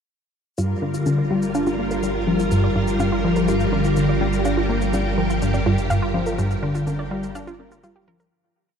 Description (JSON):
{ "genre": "ambient, sequencer-driven space music", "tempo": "124 BPM", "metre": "4/4", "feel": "straight", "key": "G minor", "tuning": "A4 = 436 Hz", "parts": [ { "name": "string machine, full ensemble", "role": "sustained chords", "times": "0.6-8.3 s", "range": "G3 to Bb4", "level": "-24 LUFS", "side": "equal", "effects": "ensemble chorus" }, { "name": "wide unison pluck", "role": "arpeggios", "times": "0.6-8.3 s", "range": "F4 to F5", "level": "-30 LUFS", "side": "right 2 dB", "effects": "auto-pan, tape echo" }, { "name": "tight sequenced synth", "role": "riff", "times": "0.6-8.2 s", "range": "G2 to D4", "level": "-22 LUFS", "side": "equal", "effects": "chorus, cassette tape, tape echo" }, { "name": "round analog bass", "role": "bass", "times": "0.6-8.3 s", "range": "G1", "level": "-28 LUFS", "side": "equal", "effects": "none" }, { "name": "shaker and congas", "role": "percussion", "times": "0.6-8.3 s", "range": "none", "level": "-35 LUFS", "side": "left 3 dB", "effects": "tape echo" }, { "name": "pulsing gated texture", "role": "texture", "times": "0.6-8.3 s", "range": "F4 to F5", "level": "-38 LUFS", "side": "right 1 dB", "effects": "none" } ], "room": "wet huge ambient reverb, RT60 8.1 s", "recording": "none", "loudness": "-19 LUFS", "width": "side -7 dB against mid", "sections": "0.6-8.3 A section", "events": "filter sweep on synth arpeggio sound 0.6-8.3; fade-out 5.7-8.3", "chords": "0.6 Gm7" }